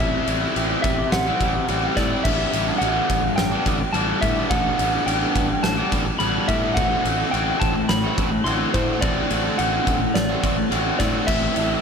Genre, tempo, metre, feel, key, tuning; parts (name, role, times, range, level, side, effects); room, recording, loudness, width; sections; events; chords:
post-rock; 106 BPM; 4/4; straight; A4 = 436 Hz
electric slide guitar; melody; 0.0-11.8 s; C5 to C6; -25 LUFS; equal; analog delay
overdriven semi-hollow guitar; riff; 0.0-11.8 s; G2 to F#4; -23 LUFS; equal; spring reverb, slapback echo
fuzz fingered electric bass; bass; 0.0-11.7 s; A1 to A2; -27 LUFS; equal; overdrive
oversized low-tuned drum kit; drums; 0.3-11.7 s; crash cymbal, kick drum, ride cymbal, snare drum; -24 LUFS; equal
moderate lush hall reverb, RT60 2.0 s; big arena sound; -18 LUFS; side -6 dB against mid
0.0-11.8 A section
0.0 C6/A; 2.3 Gmaj7/A; 6.8 D7/A; 11.3 Am